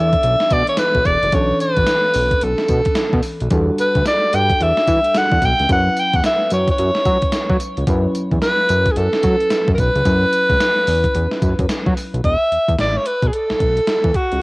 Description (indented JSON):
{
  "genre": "R&B, new jack swing",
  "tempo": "110 BPM",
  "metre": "4/4",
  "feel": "swing 62% on 16ths",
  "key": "unclear",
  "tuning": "A4 = 440 Hz",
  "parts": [
    { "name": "breathy alto saxophone", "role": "melody", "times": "0.0-14.4 s", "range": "F#4 to G5", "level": "-17 LUFS", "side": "equal", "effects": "none" },
    { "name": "mellow FM electric piano", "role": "accompaniment", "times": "0.0-12.3 s", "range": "E3 to B4", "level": "-25 LUFS", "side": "equal", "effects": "chorus, cassette tape" },
    { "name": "fat analog bass", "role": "bass", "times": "0.0-14.4 s", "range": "E1 to F#3", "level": "-19 LUFS", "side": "equal", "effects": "none" },
    { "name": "gated 80s digital drum machine", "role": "drums", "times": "0.1-14.4 s", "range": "hi-hat, kick drum, snare drum, tambourine", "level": "-21 LUFS", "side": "equal", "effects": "gated reverb, gated reverb snare, overdrive, cassette tape" }
  ],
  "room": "light reverb",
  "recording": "home recording on cassette",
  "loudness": "-14 LUFS",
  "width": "side -24 dB against mid",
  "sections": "0.0-12.2 A section; 12.2-14.4 B section",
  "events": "none",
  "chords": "0.0 Bm11; 3.5 Em11; 5.7 F#7sus4; 12.2 Esus4"
}